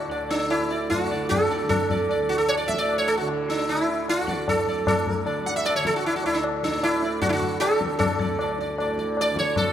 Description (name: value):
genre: indian classical, Hindustani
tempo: 152 BPM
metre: 4/4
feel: straight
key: D raga hamsadhwani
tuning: A4 = 439 Hz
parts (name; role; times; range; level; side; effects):
- sitar; melody; 0.0-9.7 s; D4 to F#5; -23 LUFS; right 1 dB; none
- tanpura; drone; 0.0-9.7 s; D2 to D3; -31 LUFS; right 3 dB; none
- tabla; percussion; 0.1-9.7 s; none; -27 LUFS; left 3 dB; none
room: moderate scoring stage reverb, RT60 2.0 s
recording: none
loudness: -21 LUFS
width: side -10 dB against mid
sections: 0.0-9.7 A section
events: speeding up 0.0-9.7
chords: none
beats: | 0.11 0.51 0.91 1.30 | 1.70 2.10 2.50 2.90 | 3.29 3.69 4.08 4.48 | 4.87 5.26 5.66 6.05 | 6.44 6.83 7.22 7.62 | 8.01 8.39 8.78 9.17 | 9.56